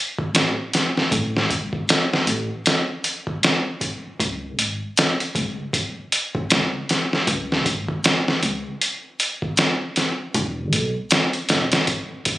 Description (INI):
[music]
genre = trip hop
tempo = 78 BPM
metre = 4/4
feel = swing 59% on 16ths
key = unclear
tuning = A4 = 439 Hz
[part]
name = trip hop sampler-style drum kit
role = drums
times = 0.2-12.4 s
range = hi-hat, kick drum, snare drum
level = -19 LUFS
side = equal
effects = none
[part]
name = upright bass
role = bass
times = 0.3-11.7 s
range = E1 to C#2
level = -26 LUFS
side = equal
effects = none
[sound]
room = light reverb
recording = recorded on a phone in the room, studio ambience, compression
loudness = -19 LUFS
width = side -16 dB against mid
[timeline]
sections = 0.0-12.4 A section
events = none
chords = none